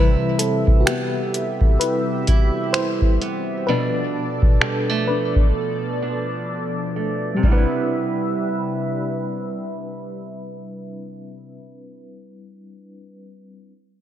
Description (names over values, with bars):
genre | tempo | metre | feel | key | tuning
contemporary R&B | 64 BPM | 4/4 | swing 58% on 16ths | C major | A4 = 438 Hz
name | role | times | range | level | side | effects
mellow FM electric piano | accompaniment | 0.0-13.7 s | B2 to C5 | -25 LUFS | left 2 dB | chorus, tremolo
chorused pulse-width pad | sustained chords | 0.0-11.6 s | B2 to E5 | -27 LUFS | equal | none
picked steel-string acoustic guitar | arpeggios | 0.0-11.8 s | B2 to E4 | -27 LUFS | right 6 dB | ping-pong delay
booming analog drum machine | drums | 0.4-7.7 s | crash cymbal, finger snaps, hi-hat, kick drum | -17 LUFS | equal | none
room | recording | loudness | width
light reverb | low-pass filter | -18 LUFS | side -11 dB against mid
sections
0.0-7.4 A section; 7.4-11.2 B section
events
FM electric piano solo 0.0-7.4; filter sweep 0.0-7.4; break 5.6-7.4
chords
0.0 Cmaj7; 3.7 G9/B (rootless); 7.4 Cmaj7